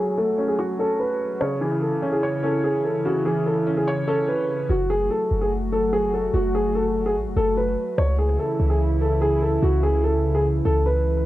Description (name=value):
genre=hip hop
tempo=146 BPM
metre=4/4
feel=half-time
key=F# minor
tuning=A4 = 440 Hz
part: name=dark concert grand piano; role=melody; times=0.0-11.2 s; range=F#4 to C#5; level=-23 LUFS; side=equal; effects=low-pass filter, tape echo
part: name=felt-muted upright piano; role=accompaniment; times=0.0-4.7 s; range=C#3 to C#5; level=-26 LUFS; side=right 1 dB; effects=low-pass filter, cassette tape
part: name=warbly tape-like pad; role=sustained chords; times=0.0-11.3 s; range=C#3 to G#5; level=-27 LUFS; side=equal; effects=chorus, built-in reverb, low-pass filter, cassette tape
part: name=clean 808-style bass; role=bass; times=4.7-11.2 s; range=F#1 to C#2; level=-23 LUFS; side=equal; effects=none
room=little or no reverb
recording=home recording on cassette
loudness=-20 LUFS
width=side -15 dB against mid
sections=0.0-4.7 A section; 4.7-11.3 B section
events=filter sweep 0.0-4.7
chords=0.0 F#madd9; 1.4 C#m; 4.7 F#m; 8.0 C#m